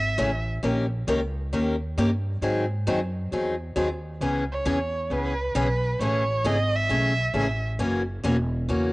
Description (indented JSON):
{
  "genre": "acoustic string swing (jazz manouche)",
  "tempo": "134 BPM",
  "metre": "4/4",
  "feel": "swing 65% on 8ths",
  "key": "C# minor",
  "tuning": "A4 = 439 Hz",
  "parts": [
    { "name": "warm violin", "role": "melody", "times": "0.0-0.4, 4.5-7.6 s", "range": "B4 to E5", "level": "-27 LUFS", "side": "right 2 dB", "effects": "cassette tape" },
    { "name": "upright bass", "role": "bass", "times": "0.0-8.9 s", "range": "E1 to G#2", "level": "-27 LUFS", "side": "equal", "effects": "transformer saturation" },
    { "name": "picked steel-string acoustic guitar", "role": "accompaniment", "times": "0.2-8.9 s", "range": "C#3 to A#4", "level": "-26 LUFS", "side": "left 1 dB", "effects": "cassette tape" }
  ],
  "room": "light reverb, studio ambience",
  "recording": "home recording on cassette, nothing above 10.5 kHz",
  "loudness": "-23 LUFS",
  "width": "side -21 dB against mid",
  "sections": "0.0-8.9 A section",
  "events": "none",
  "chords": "0.0 Amaj7; 0.6 D#7; 2.4 G#7; 4.2 C#m7; 6.0 Amaj7; 7.8 F#7",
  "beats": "0.18 | 0.63 1.07 1.52 1.97 | 2.42 2.87 3.31 3.76 | 4.21 4.66 5.11 5.55 | 6.00 6.45 6.90 7.34 | 7.79 8.24 8.69"
}